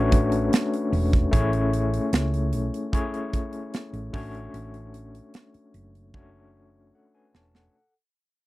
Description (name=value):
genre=lush 1970s-style soul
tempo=75 BPM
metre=4/4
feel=straight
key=unclear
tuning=A4 = 440 Hz
part: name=overdriven tine electric piano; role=accompaniment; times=0.0-7.9 s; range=A3 to A5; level=-27 LUFS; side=left 2 dB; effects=fast tremolo
part: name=hollow-body short-scale fingered electric bass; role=bass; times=0.0-7.7 s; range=E1 to C#2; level=-27 LUFS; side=right 1 dB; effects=none
part: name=modern studio drum kit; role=drums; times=0.1-7.7 s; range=hi-hat, kick drum, snare drum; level=-22 LUFS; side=right 1 dB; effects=none
room=little or no reverb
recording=dry, close 1970s-style studio recording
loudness=-22 LUFS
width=side -18 dB against mid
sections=0.0-7.7 A section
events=fade-out 0.0-7.7; drum fill 6.1-7.7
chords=0.0 Dmaj7/A; 1.3 Amaj7; 4.1 Dmaj7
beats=0.52 | 1.33 2.13 2.93 3.73 | 4.54 5.34 6.14 6.94